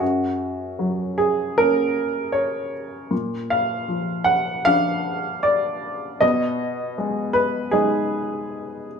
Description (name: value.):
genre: neoclassical minimalist piano.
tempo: 78 BPM.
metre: 4/4.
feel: rubato.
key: F# major.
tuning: A4 = 439 Hz.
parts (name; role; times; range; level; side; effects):
warm upright piano; solo; 0.0-9.0 s; F#2 to F#5; -20 LUFS; equal; none.
room: wet large studio reverb, RT60 0.8 s.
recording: band playing live in one room.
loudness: -20 LUFS.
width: side -6 dB against mid.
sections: 0.0-9.0 A section.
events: none.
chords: 0.0 F#; 3.1 A#; 6.2 G#m/B.